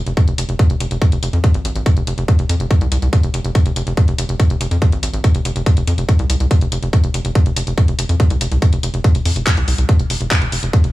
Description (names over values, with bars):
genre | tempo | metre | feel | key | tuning
psychedelic trance | 142 BPM | 4/4 | straight | F minor | A4 = 440 Hz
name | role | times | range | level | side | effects
tight sequencer bass | bass | 0.1-10.9 s | F1 to F2 | -18 LUFS | equal | none
garage drum kit | drums | 0.1-10.9 s | handclaps, hi-hat | -25 LUFS | left 1 dB | none
electronic kick drum | drums | 0.2-10.8 s | none | -13 LUFS | equal | none
room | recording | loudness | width
digital ambience | none | -14 LUFS | side -17 dB against mid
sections
0.0-10.9 A section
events
none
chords
none